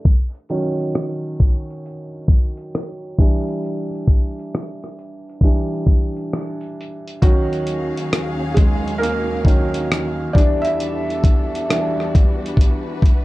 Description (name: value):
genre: lo-fi hip hop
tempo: 67 BPM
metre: 4/4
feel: swing 64% on 16ths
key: unclear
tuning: A4 = 440 Hz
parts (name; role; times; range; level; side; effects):
- felt-muted upright piano; accompaniment; 0.0-13.2 s; Eb3 to E5; -23 LUFS; right 1 dB; cassette tape, plate reverb
- dusty soul sampler-style drum kit; drums; 0.0-13.2 s; hi-hat, kick drum, rim click; -15 LUFS; equal; none
- warm studio string section; sustained chords; 7.2-13.2 s; Eb2 to F5; -27 LUFS; left 1 dB; plate reverb
room: light reverb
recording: dark, warm production, low-pass filter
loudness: -16 LUFS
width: side -18 dB against mid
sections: 0.0-7.2 A section; 7.2-13.2 B section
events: felt piano solo 0.0-7.2, 7.2-13.2; filter sweep 0.0-7.2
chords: 0.1 Ebm7; 3.2 Em7; 7.2 Ebm11; 10.3 Em11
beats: | 0.05 0.95 1.84 2.74 | 3.63 4.53 5.42 6.32 | 7.22 8.11 9.01 9.90 | 10.80 11.69 12.59